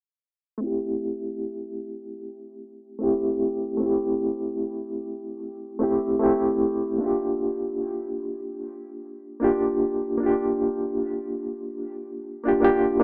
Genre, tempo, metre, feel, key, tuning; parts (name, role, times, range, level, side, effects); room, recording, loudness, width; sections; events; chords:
trip hop; 75 BPM; 4/4; swing 59% on 16ths; A4 = 441 Hz
reed electric piano; accompaniment; 0.6-13.0 s; A3 to G4; -26 LUFS; equal; fast tremolo, harmonic tremolo
light reverb, digital ambience; rough home demo mix, low-pass filter, small speaker sound; -26 LUFS; mono
0.6-13.0 A section
filter sweep 0.6-13.0
0.6 Am7; 7.0 Gm7